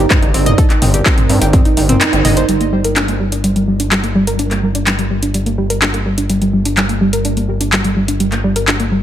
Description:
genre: melodic techno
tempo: 126 BPM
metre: 4/4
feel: straight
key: G minor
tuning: A4 = 440 Hz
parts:
  - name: deep dark ambient pad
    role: sustained chords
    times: 0.0-9.0 s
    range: G3 to D5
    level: -23 LUFS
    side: right 5 dB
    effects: chorus, built-in reverb, sidechain pumping
  - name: analog pluck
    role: arpeggios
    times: 0.0-9.0 s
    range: G3 to Eb5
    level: -16 LUFS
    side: equal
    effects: chorus, cassette tape, sidechain pumping, dub echo
  - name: gritty driven synth bass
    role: bass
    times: 0.0-9.0 s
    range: G1 to G2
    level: -18 LUFS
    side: equal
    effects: sidechain pumping
  - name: deep house drum kit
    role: drums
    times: 0.1-8.9 s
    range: handclaps, hi-hat, toms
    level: -17 LUFS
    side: equal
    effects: overdrive, sidechain pumping on hats, sidechain pumping on toms
  - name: electronic kick drum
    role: drums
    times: 0.1-1.6 s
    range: none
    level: -12 LUFS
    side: equal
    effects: none
room: light reverb, digital ambience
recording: none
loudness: -12 LUFS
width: side -11 dB against mid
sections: 0.0-2.5 A section; 2.5-9.0 B section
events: kick drops out 2.0-2.5; band accent 2.0; filter sweep on synth pluck 2.5-9.0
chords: 0.0 Cmadd9/G; 2.5 Gm

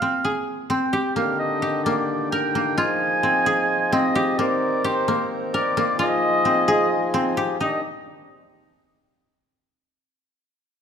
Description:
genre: contemporary instrumental, chamber music in an uneven meter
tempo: 261 BPM (eighths)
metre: 7/8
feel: straight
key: Eb major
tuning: A4 = 440 Hz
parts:
  - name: warm oboe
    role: melody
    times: 0.0-7.8 s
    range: C5 to Ab5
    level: -23 LUFS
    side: right 1 dB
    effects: none
  - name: koto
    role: arpeggios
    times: 0.0-8.6 s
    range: Bb3 to Bb4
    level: -23 LUFS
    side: equal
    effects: none
  - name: pedal harmonium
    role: sustained chords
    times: 1.2-7.8 s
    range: D3 to Bb4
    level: -25 LUFS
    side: left 2 dB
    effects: none
room: moderate recital hall reverb, RT60 1.7 s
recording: dark, warm production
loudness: -19 LUFS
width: side -7 dB against mid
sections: 0.0-7.6 A section; 7.6-9.2 B section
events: none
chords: 0.0 Fm; 1.2 Ebmaj7; 2.8 Fm7; 4.4 Cm7; 6.0 Fm7; 7.6 Ebmaj7

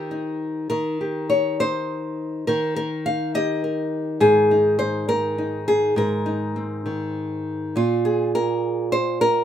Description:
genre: folk, solo fingerstyle acoustic guitar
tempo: 68 BPM (dotted quarters)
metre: 6/8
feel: rubato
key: unclear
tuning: A4 = 443 Hz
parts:
  - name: nylon-string guitar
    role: solo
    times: 0.0-9.4 s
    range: Ab2 to F5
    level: -20 LUFS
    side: equal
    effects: none
room: moderate studio reverb, RT60 0.5 s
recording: minimal, uncompressed stereo recording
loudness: -20 LUFS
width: side -10 dB against mid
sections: 0.0-7.8 A section; 7.8-9.4 B section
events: none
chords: 0.0 Cm; 0.7 Eb; 4.2 Abadd9; 7.8 Bbsus2

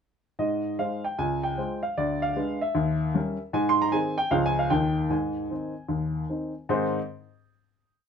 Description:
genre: jazz, stride piano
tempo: 153 BPM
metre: 4/4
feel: swing 65% on 8ths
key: Ab major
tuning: A4 = 440 Hz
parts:
  - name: warm baby grand piano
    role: solo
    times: 0.4-7.0 s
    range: Db2 to C6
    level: -24 LUFS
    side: equal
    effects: none
room: moderate studio reverb, RT60 0.6 s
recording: minimal, uncompressed stereo recording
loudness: -24 LUFS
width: side -7 dB against mid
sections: 0.4-6.7 A section; 6.7-8.1 final chord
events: none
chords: 0.4 Ab; 1.2 Dbmaj7; 2.0 Ddim7; 2.8 Eb7b9; 3.5 Ab; 4.3 Db; 4.7 Eb; 5.1 Ab

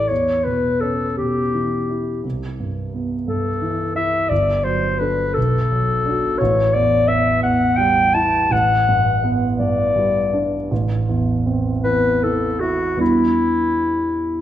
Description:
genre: classical, impressionist duo for clarinet and grand piano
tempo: 50-59 BPM (dotted quarters)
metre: 6/8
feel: rubato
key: unclear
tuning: A4 = 438 Hz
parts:
  - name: clear clarinet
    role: melody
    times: 0.0-14.4 s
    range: E4 to A5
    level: -18 LUFS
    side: left 2 dB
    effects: none
  - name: dark concert grand piano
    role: accompaniment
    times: 0.0-14.4 s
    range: G1 to A4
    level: -20 LUFS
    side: right 2 dB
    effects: none
room: wet recital hall reverb, RT60 1.5 s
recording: none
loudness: -16 LUFS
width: side -11 dB against mid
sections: 0.0-14.4 A section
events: none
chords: 0.1 Em6; 2.2 Cmaj7; 4.3 Gsus2; 5.4 Bm7; 6.4 Asus2; 8.5 Gmaj7/A; 10.7 Am; 13.0 Em7

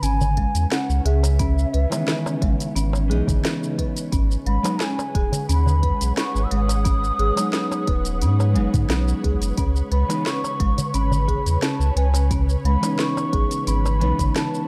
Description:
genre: organic downtempo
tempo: 88 BPM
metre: 4/4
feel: straight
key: C# minor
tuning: A4 = 438 Hz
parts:
  - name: mellow bansuri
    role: melody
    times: 0.0-14.7 s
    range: E5 to E6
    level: -31 LUFS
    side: equal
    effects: tape echo
  - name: ethereal airy pad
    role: sustained chords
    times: 0.0-14.7 s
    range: C#3 to F#5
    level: -33 LUFS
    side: equal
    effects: ensemble chorus, built-in reverb, sidechain pumping
  - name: folk marimba with medium mallets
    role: arpeggios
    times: 0.0-14.7 s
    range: G#3 to B4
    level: -32 LUFS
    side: equal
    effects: tape echo
  - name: warm sub bass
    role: bass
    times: 0.0-14.3 s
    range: D#1 to G#2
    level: -22 LUFS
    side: equal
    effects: sidechain pumping
  - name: afro-pop drum kit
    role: drums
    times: 0.0-14.7 s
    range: hi-hat, shaker, snare drum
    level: -31 LUFS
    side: equal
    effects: small room reverb
  - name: darbuka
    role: percussion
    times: 0.2-14.3 s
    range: none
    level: -32 LUFS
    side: equal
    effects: none
  - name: electronic kick drum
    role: drums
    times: 0.4-14.3 s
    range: none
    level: -26 LUFS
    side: equal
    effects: small room reverb
  - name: mellow electric guitar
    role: accompaniment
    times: 1.9-14.7 s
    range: D#3 to D#4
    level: -30 LUFS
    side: equal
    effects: sidechain pumping, tape echo
room: light reverb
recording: dark, warm production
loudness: -21 LUFS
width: mono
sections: 0.0-14.7 A section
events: none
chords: 0.0 C#m7; 4.1 G#m7; 9.6 C#m7

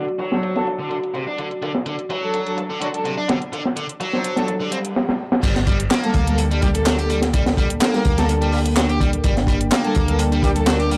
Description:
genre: breakbeat, breaks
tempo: 126 BPM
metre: 4/4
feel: swing 53% on 16ths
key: G harmonic minor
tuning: A4 = 444 Hz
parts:
  - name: dark analog pad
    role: sustained chords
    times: 0.0-11.0 s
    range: Bb3 to G5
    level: -28 LUFS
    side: equal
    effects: chorus, sidechain pumping
  - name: distorted electric guitar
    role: riff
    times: 0.0-11.0 s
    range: C3 to G4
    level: -28 LUFS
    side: equal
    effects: overdrive, tube saturation, analog delay
  - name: garage drum kit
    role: drums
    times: 0.1-10.9 s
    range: handclaps, hi-hat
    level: -31 LUFS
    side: equal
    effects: overdrive
  - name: crunchy breakbeat drum kit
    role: drums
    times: 0.2-11.0 s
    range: crash cymbal, hi-hat, kick drum, snare drum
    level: -24 LUFS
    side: equal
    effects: low-pass filter on kick, low-pass filter on hats, low-pass filter on cymbals, low-pass filter on snare, low-pass filter on room
  - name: dark symphonic string section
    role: stabs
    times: 0.3-10.6 s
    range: F#3 to C5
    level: -27 LUFS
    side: equal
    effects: vintage 12-bit sampler grit, analog delay
  - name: swell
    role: sound effects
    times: 4.7-5.4 s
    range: none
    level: -33 LUFS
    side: equal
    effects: none
  - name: hollow-body short-scale fingered electric bass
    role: bass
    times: 5.4-11.0 s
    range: G1 to D2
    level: -24 LUFS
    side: equal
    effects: none
room: little or no reverb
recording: dry, gritty hardware recording, low-pass filter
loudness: -20 LUFS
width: mono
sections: 0.0-5.4 A section; 5.4-11.0 B section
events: filter sweep on distorted electric guitar 0.0-5.4; swell 4.7-5.4; drum fill 5.0-5.4; drop 5.4-11.0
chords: 0.0 D; 5.4 Gmadd9

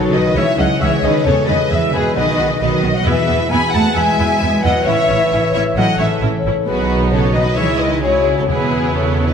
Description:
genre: cinematic, heroic adventure film score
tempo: 133 BPM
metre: 4/4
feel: straight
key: E major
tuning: A4 = 440 Hz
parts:
  - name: rich symphonic violin section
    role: melody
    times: 0.0-9.3 s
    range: F#4 to G#5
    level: -22 LUFS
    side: left 4 dB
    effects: none
  - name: mellow hollow concert flute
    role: second line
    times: 0.0-9.3 s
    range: B4 to B5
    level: -25 LUFS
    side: left 1 dB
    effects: none
  - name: rich symphonic violin section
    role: second line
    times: 0.0-9.3 s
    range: B4 to B5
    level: -21 LUFS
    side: left 2 dB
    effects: none
  - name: mellow French horn section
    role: sustained chords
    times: 0.0-9.3 s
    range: E4 to B4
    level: -24 LUFS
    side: left 2 dB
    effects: none
  - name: mellow trombone section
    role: sustained chords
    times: 0.0-9.3 s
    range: B2 to B3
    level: -24 LUFS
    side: right 4 dB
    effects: none
  - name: concert harp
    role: arpeggios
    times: 0.0-9.3 s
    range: A2 to G#5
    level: -22 LUFS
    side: left 7 dB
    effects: none
  - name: warm symphonic cello section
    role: bass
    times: 0.0-9.3 s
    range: B2 to B3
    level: -22 LUFS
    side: right 3 dB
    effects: none
  - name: dark clarinet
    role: second line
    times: 0.1-9.3 s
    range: B4 to B5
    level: -24 LUFS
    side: left 1 dB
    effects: none
  - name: clear chamber viola section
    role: accompaniment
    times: 0.1-9.3 s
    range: F#3 to G#4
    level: -25 LUFS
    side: right 3 dB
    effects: none
  - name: warm symphonic double bass section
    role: bass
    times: 0.1-9.3 s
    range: A1 to E2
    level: -21 LUFS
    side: right 3 dB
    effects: none
  - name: timpani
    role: percussion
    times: 1.3-3.7, 8.5-9.1 s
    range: E2 to B2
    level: -28 LUFS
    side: left 1 dB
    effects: none
room: wet scoring stage reverb, RT60 1.5 s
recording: lossy compression artefacts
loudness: -13 LUFS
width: side -7 dB against mid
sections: 0.0-9.3 A section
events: none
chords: 0.4 C#m; 1.3 E; 2.2 B; 3.1 E; 4.9 A; 6.7 B; 7.6 C#m; 8.5 E

